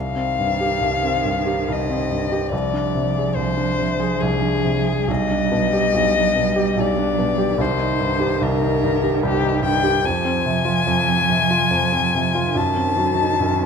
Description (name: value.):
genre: classical, slow romantic movement for piano trio.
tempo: 72 BPM.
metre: 3/4.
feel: uneven beats, rubato.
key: C minor.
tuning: A4 = 439 Hz.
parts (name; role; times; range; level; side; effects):
warm violin; melody; 0.0-13.7 s; G4 to A5; -21 LUFS; left 7 dB; none.
rich cello; second line; 0.0-13.7 s; D#3 to G3; -24 LUFS; right 8 dB; none.
clear baby grand piano; accompaniment; 0.0-13.7 s; B1 to Ab4; -21 LUFS; right 1 dB; none.
room: moderate concert hall reverb, RT60 2.0 s.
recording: none.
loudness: -17 LUFS.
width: side -6 dB against mid.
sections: 0.0-13.7 A section.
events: none.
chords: 0.0 Cm; 2.5 Dm7b5/C; 5.1 G/B; 7.6 Cm; 10.0 Fm; 12.6 F#dim7.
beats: 0.82 1.67 | 2.52 3.36 4.19 | 5.09 5.94 6.78 | 7.59 8.41 9.22 | 10.03 10.86 11.70 | 12.55 13.40.